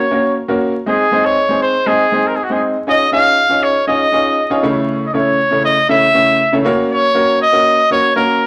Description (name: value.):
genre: soul.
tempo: 119 BPM.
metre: 4/4.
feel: straight.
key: unclear.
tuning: A4 = 441 Hz.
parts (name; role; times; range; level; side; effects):
bright trumpet; melody; 0.0-8.5 s; Gb4 to F5; -15 LUFS; equal; tube saturation.
clear concert grand piano; accompaniment; 0.0-8.4 s; C#3 to Db5; -18 LUFS; equal; none.
room: wet studio reverb, RT60 0.9 s.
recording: vinyl crackle.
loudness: -14 LUFS.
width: mono.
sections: 0.0-8.5 A section.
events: none.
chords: 0.0 Gb; 0.9 Ab; 2.9 Dbadd9; 4.6 A/C#; 6.6 Gb.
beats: 0.36 | 0.86 1.37 1.87 2.37 | 2.87 3.38 3.88 4.38 | 4.89 5.39 5.89 6.40 | 6.90 7.41 7.91 8.41.